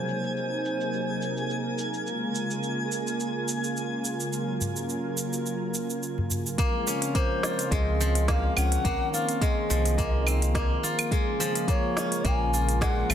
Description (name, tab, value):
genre	organic downtempo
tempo	106 BPM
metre	4/4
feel	swing 54% on 16ths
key	Bb minor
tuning	A4 = 442 Hz
part	bright bass bansuri	melody	0.0-1.7, 7.1-13.1 s	C5 to Ab5	-32 LUFS	left 1 dB	tape echo
part	warm analog pad	sustained chords	0.0-13.1 s	C3 to Bb4	-31 LUFS	right 1 dB	chorus, sidechain pumping
part	steel-string zither	arpeggios	0.0-0.5, 6.6-13.1 s	F3 to F4	-29 LUFS	left 1 dB	vintage 12-bit sampler grit, tape echo
part	twinkling granular texture	texture	0.0-6.6 s	Ab4 to Ab5	-35 LUFS	equal	built-in reverb
part	organic electronic drum kit	drums	0.1-13.1 s	claves, hi-hat, shaker, snare drum	-31 LUFS	right 2 dB	low-pass filter on hats, low-pass filter on perc, soft clipping on snare, low-pass filter on snare, low-pass filter on room
part	udu	percussion	4.6-6.4 s	none	-31 LUFS	left 2 dB	none
part	electronic kick drum	drums	6.6-12.9 s	none	-28 LUFS	equal	none
part	round analog bass	bass	7.7-13.1 s	Bb1 to Db2	-26 LUFS	equal	sidechain pumping
room	moderate scoring stage reverb, RT60 1.5 s, digital ambience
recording	dense, heavily limited modern master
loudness	-24 LUFS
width	side -9 dB against mid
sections	0.0-6.6 A section; 6.6-13.1 B section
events	none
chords	0.0 Cm7b5; 2.1 Bbm7; 4.3 Gbmaj7; 6.6 Dbmaj7; 8.9 Ab69/C; 11.1 Bbm7